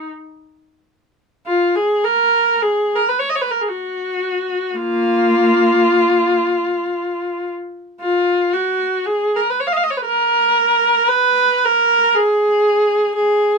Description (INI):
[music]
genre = classical, free, expressive piece for unaccompanied viola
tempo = 37-62 BPM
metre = 3/4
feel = rubato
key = unclear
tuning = A4 = 440 Hz
[part]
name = rich viola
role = solo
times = 0.0-13.6 s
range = Bb3 to F5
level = -14 LUFS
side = equal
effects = none
[sound]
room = light reverb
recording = close, detailed microphones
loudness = -14 LUFS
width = side -4 dB against mid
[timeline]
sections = 0.0-1.5 A section; 1.5-13.6 B section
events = none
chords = none